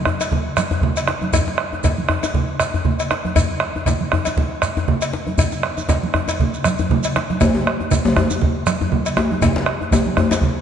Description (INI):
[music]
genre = west african traditional, West African drum ensemble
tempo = 119 BPM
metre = 4/4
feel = swing 55% on 16ths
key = none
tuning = none
[part]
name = bombo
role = percussion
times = 0.1-10.5 s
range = none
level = -21 LUFS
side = right 2 dB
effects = none
[part]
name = djembe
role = percussion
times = 0.1-10.4 s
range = none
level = -24 LUFS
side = left 5 dB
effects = none
[part]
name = congas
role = percussion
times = 0.2-10.6 s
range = none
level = -23 LUFS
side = right 4 dB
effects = none
[part]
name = cowbell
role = percussion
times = 0.2-10.4 s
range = none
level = -27 LUFS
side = left 4 dB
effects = none
[part]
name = shekere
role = percussion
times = 0.2-10.4 s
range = none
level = -29 LUFS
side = right 4 dB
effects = none
[part]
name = djembe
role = percussion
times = 7.4-10.4 s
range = none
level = -20 LUFS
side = left 2 dB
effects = none
[sound]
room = wet concert hall reverb, RT60 2.4 s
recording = nothing above 10.7 kHz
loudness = -17 LUFS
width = side -8 dB against mid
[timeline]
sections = 0.0-10.6 A section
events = none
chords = none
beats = 0.32 0.83 | 1.33 1.84 2.35 2.86 | 3.36 3.87 4.38 4.88 | 5.39 5.89 6.40 6.90 | 7.41 7.91 8.41 8.92 | 9.42 9.93 10.43